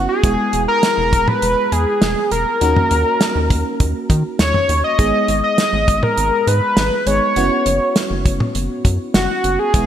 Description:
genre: synth-pop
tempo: 101 BPM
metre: 4/4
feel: straight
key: unclear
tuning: A4 = 440 Hz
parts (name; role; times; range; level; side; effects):
- octave-doubled lead; melody; 0.0-9.9 s; F#4 to D#5; -17 LUFS; equal; chorus, digital delay
- FM electric piano; accompaniment; 0.0-9.9 s; G#3 to G#4; -23 LUFS; right 1 dB; chorus
- rubbery square bass; bass; 0.0-9.9 s; E1 to D#3; -20 LUFS; equal; none
- damped 70s drum kit; drums; 0.2-9.9 s; hi-hat, kick drum, snare drum, toms; -18 LUFS; equal; gated reverb
room: moderate lush hall reverb, RT60 2.1 s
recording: bright 1980s-style digital production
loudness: -14 LUFS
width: side -10 dB against mid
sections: 0.0-9.9 A section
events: none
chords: 0.2 E; 2.6 D#m7; 5.0 G#m; 7.4 F#7sus4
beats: | 0.24 0.83 1.42 2.02 | 2.61 3.21 3.80 4.39 | 4.99 5.58 6.18 6.77 | 7.37 7.96 8.55 9.15 | 9.74

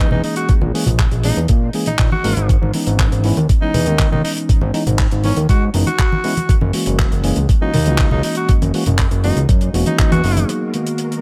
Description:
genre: nu-disco, nu disco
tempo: 120 BPM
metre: 4/4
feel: straight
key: unclear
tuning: A4 = 440 Hz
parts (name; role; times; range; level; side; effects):
- raspy tenor saxophone; melody; 0.0-10.5 s; C#4 to F#4; -27 LUFS; equal; analog delay
- tine electric piano; accompaniment; 0.0-11.2 s; D#3 to A#4; -24 LUFS; equal; sidechain pumping, analog delay
- fat analog bass; bass; 0.0-10.4 s; E1 to A#2; -20 LUFS; equal; tube saturation, sidechain pumping
- congas; percussion; 0.1-10.5 s; none; -26 LUFS; equal; analog delay
- damped 70s drum kit; drums; 0.2-11.2 s; handclaps, hi-hat; -27 LUFS; equal; none
- electronic kick drum; drums; 0.5-10.1 s; none; -17 LUFS; equal; none
- bright studio string section; sustained chords; 10.5-11.2 s; G#3 to A#4; -32 LUFS; equal; sidechain pumping, low-pass filter
room: studio ambience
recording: echo-heavy mix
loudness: -16 LUFS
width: mono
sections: 0.0-10.5 A section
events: none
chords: 0.0 A#m7b5; 2.5 C#m7/G#; 6.5 F#7; 10.5 G#m9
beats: | 0.49 0.99 1.49 1.99 | 2.49 2.99 3.49 3.99 | 4.49 4.99 5.49 5.99 | 6.49 6.99 7.49 7.99 | 8.49 8.99 9.49 9.99 | 10.49 10.99

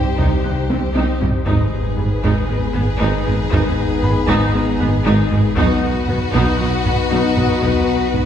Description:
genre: cinematic, hybrid orchestral and electronic film score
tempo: 117 BPM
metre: 4/4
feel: straight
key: unclear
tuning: A4 = 439 Hz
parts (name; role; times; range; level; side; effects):
- warm symphonic violin section; melody; 0.0-8.3 s; B4 to C5; -28 LUFS; left 4 dB; none
- rich studio violin section; second line; 0.0-8.3 s; F#4 to G#4; -26 LUFS; left 4 dB; none
- ethereal airy pad; sustained chords; 0.0-8.3 s; G3 to C5; -26 LUFS; left 1 dB; ensemble chorus, built-in reverb
- mellow French horn section; sustained chords; 0.0-8.3 s; G3 to Eb4; -26 LUFS; left 4 dB; none
- harp-like synth pluck; arpeggios; 0.0-8.3 s; C3 to B4; -26 LUFS; left 2 dB; none
- dark tuba; bass; 0.0-8.2 s; G#1 to C2; -25 LUFS; right 2 dB; none
- sub bass with octave; bass; 0.0-8.3 s; G#1 to C2; -25 LUFS; equal; none
- warm baby grand piano; texture; 0.0-8.3 s; D#5 to F#6; -34 LUFS; left 2 dB; tape echo
- rich symphonic viola section; accompaniment; 0.2-8.2 s; F#3 to Eb4; -24 LUFS; left 1 dB; none
- rich symphonic cello section; bass; 0.2-8.2 s; G#2 to C3; -25 LUFS; right 2 dB; none
- rich symphonic double bass section; bass; 0.2-8.2 s; G#1 to C2; -24 LUFS; right 2 dB; none
- taiko ensemble; drums; 0.2-8.3 s; none; -22 LUFS; right 1 dB; none
room: wet concert hall reverb, RT60 2.0 s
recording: heard from further back in the room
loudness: -15 LUFS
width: side -9 dB against mid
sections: 0.0-8.3 A section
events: drum fill 0.7-1.5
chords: 0.0 Cm; 1.5 G#m; 5.6 B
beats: 0.45 0.96 | 1.47 1.98 2.50 3.01 | 3.52 4.04 4.55 5.06 | 5.57 6.09 6.60 7.11 | 7.62 8.14

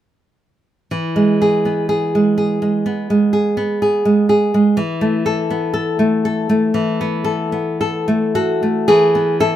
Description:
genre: romantic piece for solo classical guitar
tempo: 53-63 BPM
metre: 4/4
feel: rubato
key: E major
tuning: A4 = 439 Hz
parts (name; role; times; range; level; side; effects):
- nylon-string guitar; solo; 0.9-9.6 s; E3 to A4; -14 LUFS; equal; none
room: light reverb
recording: minimal, uncompressed stereo recording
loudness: -14 LUFS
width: side -11 dB against mid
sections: 0.9-8.9 A section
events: none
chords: 0.9 E; 4.8 Esus24; 8.9 E5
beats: | 0.91 1.90 2.87 3.83 | 4.78 5.76 6.76 7.81 | 8.90

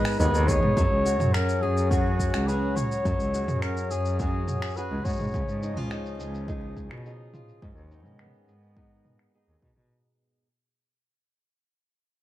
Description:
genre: folktronica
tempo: 105 BPM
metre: 4/4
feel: straight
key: unclear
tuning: A4 = 437 Hz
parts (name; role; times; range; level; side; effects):
- warm flugelhorn; melody; 0.0-5.9 s; F#4 to C#5; -30 LUFS; equal; digital delay
- fingerpicked acoustic archtop guitar; arpeggios; 0.0-10.5 s; G#2 to G#4; -33 LUFS; equal; low-pass filter
- organic electronic drum kit; drums; 0.1-9.9 s; finger snaps, shaker, toms; -32 LUFS; equal; overdrive, low-pass filter on toms, low-pass filter on perc, low-pass filter on snare
- warm cello; bass; 0.2-9.9 s; C#2 to B2; -28 LUFS; equal; none
- electronic kick drum; drums; 0.5-9.7 s; none; -29 LUFS; equal; overdrive
- hand-pumped harmonium; sustained chords; 0.8-9.9 s; D#3 to D#5; -36 LUFS; left 4 dB; stereo widening
room: small room ambience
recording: vinyl crackle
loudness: -23 LUFS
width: side -14 dB against mid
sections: 0.8-9.9 A section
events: fade-out 0.8-9.9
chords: 0.0 G#m; 0.8 F#sus2; 5.3 C#add9; 7.6 G#m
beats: 0.20 | 0.77 1.34 1.91 2.48 | 3.05 3.62 4.20 4.77 | 5.34 5.91 6.48 7.05 | 7.62 8.20 8.77 9.34

